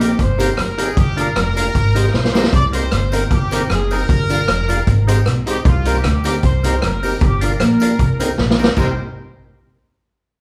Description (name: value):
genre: ska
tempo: 154 BPM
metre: 4/4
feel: swing 53% on 8ths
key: C minor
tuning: A4 = 438 Hz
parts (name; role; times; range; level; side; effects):
- warm horn section; melody; 0.0-9.0 s; F4 to D5; -26 LUFS; equal; none
- archtop guitar, miked and amplified; accompaniment; 0.0-8.9 s; C4 to C5; -28 LUFS; equal; slapback echo
- percussive tonewheel organ; stabs; 0.0-8.9 s; Ab3 to G4; -27 LUFS; equal; chorus vibrato, slow rotary speaker, slapback echo
- upright bass; bass; 0.0-9.0 s; F1 to D2; -21 LUFS; equal; none
- street-band drum kit; drums; 0.0-8.9 s; crash cymbal, hi-hat, kick drum, rim click, snare drum; -20 LUFS; equal; none
- tambourine; percussion; 0.0-9.0 s; none; -42 LUFS; equal; none
- mellow electric guitar; riff; 0.2-8.5 s; F2 to D3; -28 LUFS; equal; none
room: moderate large studio reverb, RT60 1.2 s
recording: band playing live in one room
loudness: -16 LUFS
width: mono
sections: 0.0-8.8 A section; 8.8-10.3 B section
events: drum fill 2.1-2.5, 8.4-8.8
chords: 0.0 Cm7; 1.0 Gm7; 1.8 Abmaj7; 2.5 Cm7; 4.1 Gm7; 4.9 Abmaj7; 5.7 Cm7; 7.2 Gm7; 8.0 Cm7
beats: 0.19 0.58 | 0.97 1.36 1.75 2.15 | 2.54 2.93 3.32 3.71 | 4.10 4.49 4.88 5.27 | 5.66 6.05 6.44 6.83 | 7.22 7.61 8.00 8.38 | 8.77